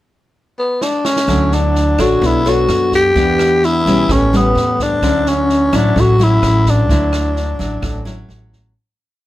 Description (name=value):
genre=bossa nova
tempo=128 BPM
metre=4/4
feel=straight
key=D major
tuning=A4 = 440 Hz
part: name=growling tenor saxophone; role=melody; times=0.6-8.3 s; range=B3 to G4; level=-15 LUFS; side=left 1 dB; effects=none
part: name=open jazz drum kit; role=drums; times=0.8-8.6 s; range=kick drum, rim click, snare drum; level=-23 LUFS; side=right 1 dB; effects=none
part: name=nylon-string guitar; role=accompaniment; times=1.3-8.7 s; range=A2 to C#5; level=-18 LUFS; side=equal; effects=none
part: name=upright bass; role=bass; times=1.3-8.7 s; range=A1 to F#2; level=-18 LUFS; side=right 1 dB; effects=none
room=light reverb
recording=close, detailed microphones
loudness=-12 LUFS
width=side -15 dB against mid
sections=0.0-1.3 pickup bar; 1.3-8.8 A section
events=drum fill 0.8-1.3; fade-out 6.9-8.8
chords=0.0 N.C.; 1.3 Dmaj9; 2.2 Bm9; 3.2 Em7; 4.1 A9; 5.0 Dmaj9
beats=0.34 0.81 | 1.28 1.75 2.22 2.69 | 3.15 3.62 4.09 4.56 | 5.03 5.49 5.96 6.43 | 6.89 7.36 7.83 8.29